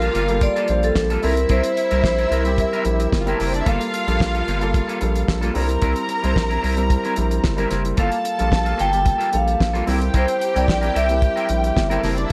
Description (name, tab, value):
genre	disco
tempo	111 BPM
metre	4/4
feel	straight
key	unclear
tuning	A4 = 440 Hz
part	vibraphone with medium hard mallets	melody	0.0-3.4, 8.0-12.0 s	A4 to G5	-24 LUFS	equal	none
part	warm symphonic violin section	second line	0.0-12.3 s	G3 to Bb5	-29 LUFS	equal	none
part	electric guitar at the edge of break-up	accompaniment	0.0-12.3 s	Bb3 to Bb4	-31 LUFS	equal	lush chorus
part	warm baby grand piano	accompaniment	0.0-12.3 s	G3 to C5	-29 LUFS	equal	none
part	rubbery square bass	bass	0.0-12.3 s	F#1 to C2	-24 LUFS	equal	none
part	damped 70s drum kit	drums	0.0-12.3 s	hi-hat, kick drum, snare drum	-26 LUFS	equal	none
room	light reverb, small room ambience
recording	none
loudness	-20 LUFS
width	mono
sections	0.0-12.3 A section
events	none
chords	0.0 Gm9; 1.2 C7; 3.7 Gm9; 5.6 C7; 8.0 Gm9; 9.9 C7